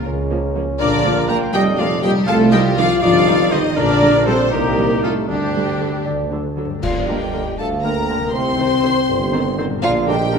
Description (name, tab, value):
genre	cinematic, playful, whimsical film cue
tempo	80 BPM (dotted quarters)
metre	6/8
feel	straight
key	G minor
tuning	A4 = 439 Hz
part	rich chamber violin section	melody	0.0-10.4 s	G3 to C6	-26 LUFS	left 4 dB	none
part	bright large flute ensemble	second line	0.0-10.4 s	D4 to C6	-27 LUFS	left 1 dB	none
part	clear oboe	second line	0.0-10.4 s	D4 to G5	-27 LUFS	right 1 dB	none
part	warm studio violin section	second line	0.0-10.4 s	F4 to Bb5	-23 LUFS	left 1 dB	none
part	dark French horn section	sustained chords	0.0-10.4 s	F3 to Bb4	-22 LUFS	left 5 dB	none
part	concert harp	arpeggios	0.0-10.4 s	G2 to Bb4	-29 LUFS	left 7 dB	none
part	rich studio cello section	bass	0.0-10.4 s	D2 to Bb3	-23 LUFS	right 2 dB	none
part	mellow bassoon	accompaniment	0.1-10.4 s	D3 to F4	-26 LUFS	right 3 dB	none
part	warm chamber double bass section	bass	0.1-10.4 s	F1 to D2	-25 LUFS	right 4 dB	none
part	warm tuba	bass	0.1-10.4 s	F1 to D2	-25 LUFS	right 3 dB	none
part	warm chamber viola section	accompaniment	0.3-10.4 s	D3 to D4	-26 LUFS	right 2 dB	none
part	dark clarinet	second line	6.1-10.4 s	F4 to D5	-27 LUFS	equal	none
part	vibraphone with soft mallets	melody	6.8-10.4 s	D5 to G5	-26 LUFS	right 4 dB	none
part	clash cymbals and concert bass drum	percussion	6.8-7.8 s	none	-30 LUFS	equal	none
room	wet recital hall reverb, RT60 1.3 s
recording	none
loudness	-15 LUFS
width	side -6 dB against mid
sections	0.0-6.8 A section; 6.8-10.4 B section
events	band accent 6.8-7.3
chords	0.0 Bbm/Db; 0.8 Bb; 2.3 Cm; 3.8 Gm/Bb; 4.5 Am7b5/C; 5.3 Dsus4; 6.1 D; 6.8 Gm; 8.3 Cm; 9.8 Gm/Bb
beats	0.07 | 0.81 1.55 | 2.28 3.03 | 3.77 4.52 | 5.29 6.06 | 6.83 7.59 | 8.34 9.09 | 9.83